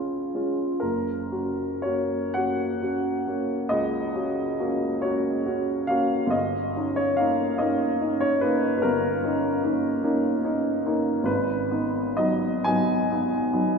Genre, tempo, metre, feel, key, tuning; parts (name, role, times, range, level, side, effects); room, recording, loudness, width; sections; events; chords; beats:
classical, romantic nocturne for solo piano; 37-51 BPM (dotted quarters); 12/8; rubato; F# major; A4 = 441 Hz
warm upright piano; solo; 0.0-13.8 s; F#1 to G#5; -22 LUFS; equal
wet cathedral reverb, RT60 5.3 s; recorded in a church or concert hall, nothing above 7.5 kHz; -22 LUFS; side -5 dB against mid
0.0-13.8 A section
0.0 C#; 0.8 F#; 6.3 D#7/G; 11.3 G#m7
| 0.83 2.36 3.73 5.05 | 6.34 7.60 8.84 10.04 | 11.28 12.67